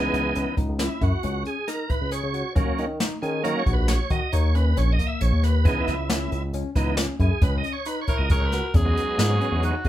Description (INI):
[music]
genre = progressive instrumental, band music in an uneven meter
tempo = 136 BPM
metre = 7/4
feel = straight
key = unclear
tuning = A4 = 440 Hz
[part]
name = bright tonewheel organ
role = accompaniment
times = 0.0-9.9 s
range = Fb3 to Fb5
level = -28 LUFS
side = right 3 dB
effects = overdrive, chorus vibrato, stopped rotary speaker
[part]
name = barky tine electric piano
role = arpeggios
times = 0.0-9.9 s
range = Bb3 to Ab4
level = -32 LUFS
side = left 5 dB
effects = medium stereo tremolo
[part]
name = smooth synth bass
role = bass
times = 0.0-9.9 s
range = Bb1 to Eb3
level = -24 LUFS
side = equal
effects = none
[part]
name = jazz brush drum kit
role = drums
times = 0.1-9.9 s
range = hi-hat, kick drum, snare drum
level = -24 LUFS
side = equal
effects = none
[part]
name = breathy tenor saxophone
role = melody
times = 8.1-9.9 s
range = F#4 to Bb4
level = -27 LUFS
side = right 1 dB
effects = none
[sound]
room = moderate studio reverb, RT60 0.5 s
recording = band playing live in one room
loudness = -21 LUFS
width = side -13 dB against mid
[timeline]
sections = 0.0-8.7 A section; 8.7-9.9 B section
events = tonewheel organ solo 0.0-8.7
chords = 0.0 Dbm7; 2.6 Ebm7; 5.7 Dbm7; 8.7 Emaj9